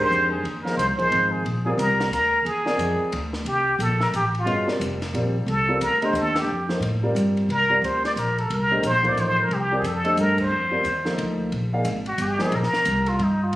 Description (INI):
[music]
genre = modal jazz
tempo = 179 BPM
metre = 3/4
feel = swing 62% on 8ths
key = C dorian from 3.5 s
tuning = A4 = 443 Hz
[part]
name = trumpet with plunger mute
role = melody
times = 0.0-13.6 s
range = Eb4 to D5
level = -22 LUFS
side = equal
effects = none
[part]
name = warm upright piano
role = accompaniment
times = 0.0-12.5 s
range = D3 to F5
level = -27 LUFS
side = equal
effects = none
[part]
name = upright bass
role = bass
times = 0.0-13.6 s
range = F1 to A2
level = -26 LUFS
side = equal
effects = none
[part]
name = compact cocktail drum kit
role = drums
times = 0.1-13.6 s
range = crash cymbal, hi-hat, kick drum, ride cymbal, snare drum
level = -34 LUFS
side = left 1 dB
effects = none
[sound]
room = moderate club reverb, RT60 0.7 s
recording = recorded on a phone in the room, studio reverb, compression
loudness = -20 LUFS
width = side -16 dB against mid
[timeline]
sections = 0.0-3.5 A section; 3.5-11.5 B section; 11.5-13.6 C section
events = band accent 6.3, 10.3; muted trumpet solo 11.5-13.6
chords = 0.0 A#9sus4; 3.5 C13sus4; 11.5 Fsus4 (rootless)